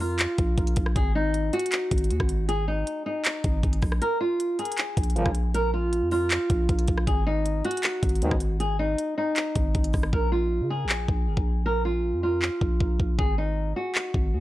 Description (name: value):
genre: hip hop, trap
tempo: 157 BPM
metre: 4/4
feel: half-time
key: unclear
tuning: A4 = 436 Hz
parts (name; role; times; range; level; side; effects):
- flamenco guitar; melody; 0.0-14.4 s; Eb4 to Bb4; -27 LUFS; equal; low-pass filter, tape echo
- growling 808-style bass; bass; 0.0-14.4 s; Ab1 to Db3; -27 LUFS; equal; none
- trap drum kit; drums; 0.0-14.2 s; handclaps, hi-hat, kick drum, rim click; -26 LUFS; equal; none
- warm brass ensemble; stabs; 5.2-5.3, 8.2-8.3 s; Cb2 to F3; -28 LUFS; right 1 dB; none
room: digital ambience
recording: dry, gritty hardware recording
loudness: -23 LUFS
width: side -15 dB against mid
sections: 0.0-10.1 A section; 10.1-14.4 B section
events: kick muted 4.0-4.8; hi-hats muted 10.1-14.4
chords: 0.0 Bb5; 1.0 Ab5; 4.0 Bb5; 7.1 Ab5; 10.1 Bb5; 13.2 Ab5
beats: 0.19 0.58 | 0.96 1.34 1.72 2.10 | 2.49 2.87 3.25 3.63 | 4.02 4.40 4.78 5.16 | 5.54 5.93 6.31 6.69 | 7.07 7.46 7.84 8.22 | 8.60 8.98 9.37 9.75 | 10.13 10.51 10.89 11.28 | 11.66 12.04 12.42 12.80 | 13.19 13.57 13.95 14.33